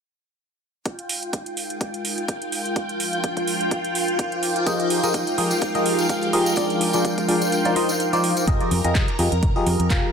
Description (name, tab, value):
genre	piano house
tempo	126 BPM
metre	4/4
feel	swing 55% on 16ths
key	F dorian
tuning	A4 = 440 Hz
part	string machine, violins	sustained chords	0.9-10.1 s	F4 to Bb5	-25 LUFS	equal	ensemble chorus, vintage 12-bit sampler grit, sidechain pumping
part	electronic kick drum	drums	0.9-10.0 s	none	-24 LUFS	equal	high-pass filter on kick, small room ambience
part	house drum kit	drums	0.9-10.0 s	handclaps, hi-hat	-28 LUFS	right 3 dB	small room ambience
part	airy breathy pad	texture	0.9-10.1 s	F3 to D6	-29 LUFS	right 1 dB	chorus, sidechain pumping
part	barking FM electric piano	riff	4.7-10.1 s	F3 to F5	-22 LUFS	left 1 dB	phaser, sidechain pumping, digital delay
part	tambourine	percussion	4.7-8.5 s	none	-30 LUFS	left 1 dB	none
part	fingered electric bass	bass	8.5-10.0 s	F1 to F2	-23 LUFS	equal	sidechain pumping
room	moderate lush hall reverb, RT60 2.0 s, digital ambience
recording	none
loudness	-20 LUFS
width	side -6 dB against mid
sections	0.9-8.5 A section; 8.5-10.1 B section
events	fade-in on analog synth pad 0.9-8.5; kick drops out 7.5-8.5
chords	0.9 Fm11; 6.6 Bb7/F; 7.5 Cm11/F; 8.5 Fm11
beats	| 0.86 1.33 1.81 2.28 | 2.76 3.24 3.71 4.19 | 4.67 5.14 5.62 6.09 | 6.57 7.05 7.52 8.00 | 8.47 8.95 9.43 9.90